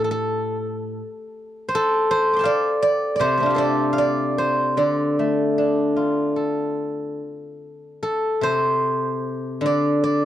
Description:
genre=chinese traditional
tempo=68-83 BPM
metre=4/4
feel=rubato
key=D yu mode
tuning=A4 = 440 Hz
part: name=steel-string zither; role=solo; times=0.0-10.2 s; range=A2 to D6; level=-19 LUFS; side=equal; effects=none
room=light reverb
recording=dry, close 1970s-style studio recording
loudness=-19 LUFS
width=side -12 dB against mid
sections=0.0-8.0 A section; 8.0-10.2 B section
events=none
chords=none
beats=0.26 0.99 | 1.72 2.46 3.23 4.00 | 4.79 5.58 6.36 7.21 | 8.04 8.84 9.64

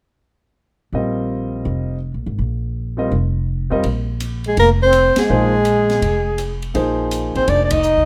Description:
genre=modal jazz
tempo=165 BPM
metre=4/4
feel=swing 65% on 8ths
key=unclear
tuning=A4 = 439 Hz
part: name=warm concert grand piano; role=accompaniment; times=0.9-7.8 s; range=F3 to Eb5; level=-24 LUFS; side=equal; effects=none
part: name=upright bass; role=bass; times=0.9-8.1 s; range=F1 to F2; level=-23 LUFS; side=equal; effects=none
part: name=open jazz drum kit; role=drums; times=3.8-7.9 s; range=hi-hat, kick drum, ride cymbal, rim click, snare drum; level=-30 LUFS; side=equal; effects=none
part: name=breathy soprano saxophone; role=melody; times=4.5-8.1 s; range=Ab4 to Eb5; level=-18 LUFS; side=equal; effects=none
part: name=trombone with plunger mute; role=second line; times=4.5-8.1 s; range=Ab3 to Eb4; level=-23 LUFS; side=equal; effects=none
room=light reverb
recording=none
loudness=-18 LUFS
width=mono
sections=0.9-3.8 A section; 3.8-8.1 B section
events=band accent 5.1, 7.7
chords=0.9 Bbsus4; 3.8 Bb9sus4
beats=| 0.93 1.30 1.66 2.02 | 2.39 2.75 3.12 3.48 | 3.84 4.21 4.57 4.93 | 5.30 5.66 6.02 6.39 | 6.75 7.12 7.48 7.84

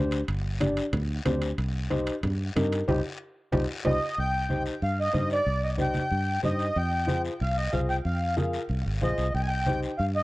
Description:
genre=latin, cumbia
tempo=185 BPM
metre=4/4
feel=straight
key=C minor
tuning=A4 = 436 Hz
part: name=dark upright piano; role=accompaniment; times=0.0-9.9 s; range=D4 to D5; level=-30 LUFS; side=left 2 dB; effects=none
part: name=fingered electric bass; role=bass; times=0.0-10.2 s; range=G1 to G2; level=-28 LUFS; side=equal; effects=none
part: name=guiro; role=percussion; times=0.1-10.2 s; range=none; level=-43 LUFS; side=left 4 dB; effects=none
part: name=timbales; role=percussion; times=0.1-3.9 s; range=none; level=-35 LUFS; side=right 3 dB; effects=none
part: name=congas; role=percussion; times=0.6-9.8 s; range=none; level=-31 LUFS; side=right 1 dB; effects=none
part: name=accordion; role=melody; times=3.9-10.2 s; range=D5 to Ab5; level=-29 LUFS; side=equal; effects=light tremolo tuning, tape echo
room=light reverb, small room ambience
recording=worn, warbling old tape, cassette tape, warbly pitch drift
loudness=-25 LUFS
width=side -19 dB against mid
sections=0.0-4.2 A section; 4.2-10.2 B section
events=drum fill 2.9-4.2; band accent 2.9-4.2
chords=0.0 Gsus4; 1.6 Cm; 6.8 Fm; 9.3 Cm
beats=| 0.29 0.61 0.93 1.26 | 1.58 1.90 2.23 2.55 | 2.88 3.20 3.52 3.85 | 4.17 4.49 4.82 5.14 | 5.46 5.79 6.11 6.44 | 6.76 7.08 7.41 7.73 | 8.06 8.38 8.70 9.03 | 9.35 9.67 10.00

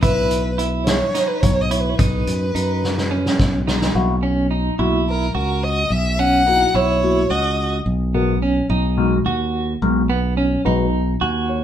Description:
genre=progressive instrumental, band music in an uneven meter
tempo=214 BPM (eighths)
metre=7/8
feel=straight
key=unclear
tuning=A4 = 440 Hz
part: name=warm violin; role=melody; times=0.0-7.7 s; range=A#4 to F#5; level=-20 LUFS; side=left 1 dB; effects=none
part: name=clean electric guitar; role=arpeggios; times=0.0-11.6 s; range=B3 to F#4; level=-23 LUFS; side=right 3 dB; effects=tremolo
part: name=modern bright fingered electric bass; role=bass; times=0.0-11.6 s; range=B1 to F#2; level=-20 LUFS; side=equal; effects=none
part: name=vintage drum kit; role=drums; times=0.0-3.9 s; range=hi-hat, kick drum, snare drum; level=-20 LUFS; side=equal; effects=none
part: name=overdriven tine electric piano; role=accompaniment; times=4.0-11.6 s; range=B2 to G#5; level=-21 LUFS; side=left 3 dB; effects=phaser
room=wet studio ambience, RT60 0.5 s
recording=band playing live in one room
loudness=-16 LUFS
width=side -10 dB against mid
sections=0.0-4.0 A section; 4.0-11.6 B section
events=drum fill 2.8-4.0; tine electric piano fill 10.9-11.6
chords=0.0 E5/B; 2.0 B; 4.0 F#7/B; 7.9 G#m7/B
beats=| 0.03 0.31 0.59 0.87 1.15 1.43 1.71 | 1.99 2.27 2.55 2.83 3.11 3.39 3.67 | 3.95 4.23 4.51 4.79 5.07 5.35 5.63 | 5.91 6.19 6.47 6.75 7.03 7.31 7.59 | 7.87 8.15 8.43 8.71 8.99 9.27 9.55 | 9.83 10.11 10.38 10.66 10.94 11.22 11.50

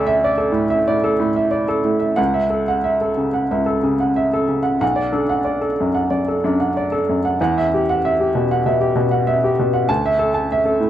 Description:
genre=neoclassical minimalist piano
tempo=93 BPM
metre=4/4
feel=rubato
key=unclear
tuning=A4 = 435 Hz
part: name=clear upright piano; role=solo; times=0.0-10.9 s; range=B1 to A5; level=-16 LUFS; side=equal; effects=none
room=moderate studio reverb, RT60 0.5 s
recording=none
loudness=-16 LUFS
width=side -11 dB against mid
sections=0.0-10.9 A section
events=none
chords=0.0 Dsus2; 2.2 A6/C#; 4.8 Bm7; 7.4 Emadd9; 9.9 Dsus2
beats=0.22 0.86 1.52 | 2.18 2.84 3.50 4.16 | 4.82 5.47 6.12 6.75 | 7.39 8.03 8.65 9.27 | 9.88 10.51

